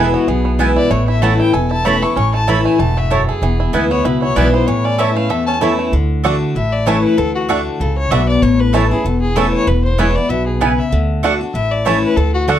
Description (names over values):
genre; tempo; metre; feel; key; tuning
bluegrass; 192 BPM; 4/4; swing 56% on 8ths; A major; A4 = 439 Hz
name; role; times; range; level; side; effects
bluegrass banjo; melody; 0.0-12.6 s; E3 to A4; -22 LUFS; right 7 dB; none
rich fiddle; melody; 0.0-12.4 s; F#4 to C#6; -21 LUFS; left 4 dB; none
picked steel-string acoustic guitar; accompaniment; 0.0-12.6 s; E2 to F#4; -17 LUFS; left 2 dB; none
mandolin; stabs; 0.0-12.6 s; A3 to A5; -18 LUFS; right 5 dB; none
upright bass; bass; 0.0-12.6 s; E1 to D2; -18 LUFS; equal; none
room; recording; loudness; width
light reverb; dark, warm production; -13 LUFS; side -10 dB against mid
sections
0.0-5.9 A section; 5.9-12.6 B section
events
none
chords
0.0 E; 0.9 A; 3.4 E; 4.7 A; 5.9 D; 6.6 A; 7.2 D; 8.4 A; 9.7 E; 10.9 D; 11.5 A